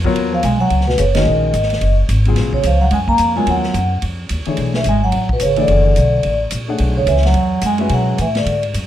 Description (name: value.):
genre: modal jazz.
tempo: 217 BPM.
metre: 4/4.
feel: swing 59% on 8ths.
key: unclear.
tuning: A4 = 440 Hz.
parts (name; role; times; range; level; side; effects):
warm grand piano; accompaniment; 0.0-8.2 s; Db3 to F#5; -21 LUFS; left 4 dB; none.
upright bass; bass; 0.0-8.9 s; Gb1 to B2; -17 LUFS; equal; none.
vintage drum kit; drums; 0.0-8.8 s; hi-hat, kick drum, ride cymbal, snare drum; -26 LUFS; equal; none.
vibraphone with soft mallets; melody; 0.3-8.6 s; Cb5 to Bb5; -18 LUFS; left 1 dB; none.
mellow bass clarinet; second line; 0.3-8.6 s; B2 to Bb3; -21 LUFS; right 4 dB; none.
room: light reverb.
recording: dark, warm production.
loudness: -13 LUFS.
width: side -12 dB against mid.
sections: 0.2-8.9 A section.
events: band accent 1.1.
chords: 0.2 Ebm11; 4.6 Bm11.